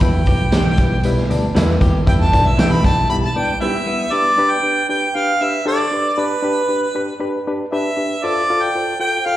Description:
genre	uptempo 1960s-style soul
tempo	117 BPM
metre	4/4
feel	straight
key	unclear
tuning	A4 = 441 Hz
part	mellow harmonica	melody	0.0-9.4 s	B4 to B5	-18 LUFS	right 1 dB	slapback echo
part	reed electric piano	accompaniment	0.0-9.4 s	G3 to D5	-22 LUFS	left 2 dB	overdrive, slapback echo
part	electric guitar through a small old amp	riff	0.0-4.0 s	B3 to G4	-28 LUFS	left 4 dB	slapback echo
part	vintage muted picked electric bass	bass	0.0-3.0 s	B1 to E3	-18 LUFS	equal	none
part	raw garage drum kit	drums	0.0-3.0 s	hi-hat, kick drum, snare drum	-18 LUFS	equal	none
part	electric guitar through a small old amp	stabs	0.5-3.8 s	B3 to B4	-24 LUFS	right 5 dB	lush chorus, slapback echo
room	light reverb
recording	live gig heard through the venue's PA, recital hall reverb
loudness	-15 LUFS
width	side -14 dB against mid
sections	0.0-4.1 A section; 4.1-9.4 B section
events	harmonica solo 0.0-4.1; break 3.1-4.1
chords	0.0 Em; 4.1 G; 8.2 F

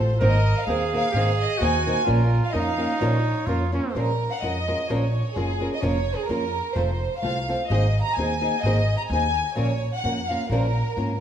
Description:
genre	mexican folk, mariachi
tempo	128 BPM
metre	2/4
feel	straight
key	Bb minor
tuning	A4 = 440 Hz
part	dark studio violin section	melody	0.0-11.2 s	Ab4 to Bb5	-26 LUFS	equal	tape echo
part	nylon-string guitar	accompaniment	0.0-11.1 s	Ab2 to Bb4	-27 LUFS	equal	none
part	upright bass	bass	0.0-11.2 s	F1 to Ab2	-24 LUFS	equal	none
part	clear trumpet	second line	0.2-3.9 s	Db4 to Bb4	-27 LUFS	right 4 dB	none
room	moderate recital hall reverb, RT60 1.4 s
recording	small room ambience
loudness	-21 LUFS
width	side -9 dB against mid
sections	0.0-4.0 A section; 4.0-11.2 A section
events	none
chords	0.2 Abadd9; 2.1 Bbm; 4.0 Bbm7; 5.8 Bbm/F; 6.8 F; 7.7 Abadd9; 9.6 Bbm

